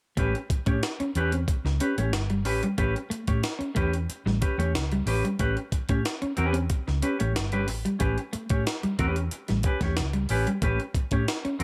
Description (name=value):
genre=funk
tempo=92 BPM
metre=4/4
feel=straight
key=A mixolydian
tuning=A4 = 442 Hz
part: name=clean electric guitar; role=accompaniment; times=0.2-11.6 s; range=C#4 to C#5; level=-33 LUFS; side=equal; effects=none
part: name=clean electric guitar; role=riff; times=0.2-11.6 s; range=G3 to C#4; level=-34 LUFS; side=equal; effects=none
part: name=hollow-body short-scale fingered electric bass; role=bass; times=0.2-11.6 s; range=G1 to A2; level=-30 LUFS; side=equal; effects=none
part: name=breakbeat sampler-style drum kit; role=drums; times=0.2-11.6 s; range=hi-hat, kick drum, snare drum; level=-32 LUFS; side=equal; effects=none
room=light reverb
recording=none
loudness=-27 LUFS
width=mono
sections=0.2-11.6 A section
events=none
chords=0.2 A9